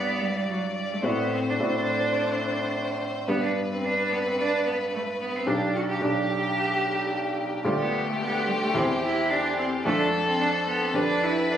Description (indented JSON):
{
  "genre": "quick classical-period movement for piano trio",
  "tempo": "109 BPM",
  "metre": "4/4",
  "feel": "rubato",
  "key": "G major, C major from 7.7 s",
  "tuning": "A4 = 439 Hz",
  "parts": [
    { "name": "rich violin", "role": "melody", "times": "0.0-11.6 s", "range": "G4 to D5", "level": "-29 LUFS", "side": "left 2 dB", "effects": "none" },
    { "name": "rich cello", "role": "second line", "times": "0.0-11.6 s", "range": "F#3 to G4", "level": "-28 LUFS", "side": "right 3 dB", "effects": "none" },
    { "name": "clear baby grand piano", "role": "accompaniment", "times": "0.0-11.6 s", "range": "B1 to D5", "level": "-27 LUFS", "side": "equal", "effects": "none" }
  ],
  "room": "wet recital hall reverb, RT60 1.4 s",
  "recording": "recorded on a phone in the room, studio reverb, compression",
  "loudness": "-23 LUFS",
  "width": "side -9 dB against mid",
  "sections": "0.0-11.6 A section",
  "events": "none",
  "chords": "0.0 G5; 1.1 D7/A; 3.3 G; 5.5 G/B; 7.7 G5/D; 8.8 C/E; 9.9 Dm/F; 11.0 G7/F",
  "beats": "0.50 | 1.05 1.62 2.18 2.74 | 3.29 3.84 4.39 4.95 | 5.49 6.04 6.58 7.13 | 7.67 8.21 8.76 9.31 | 9.86 10.41 10.95 11.50"
}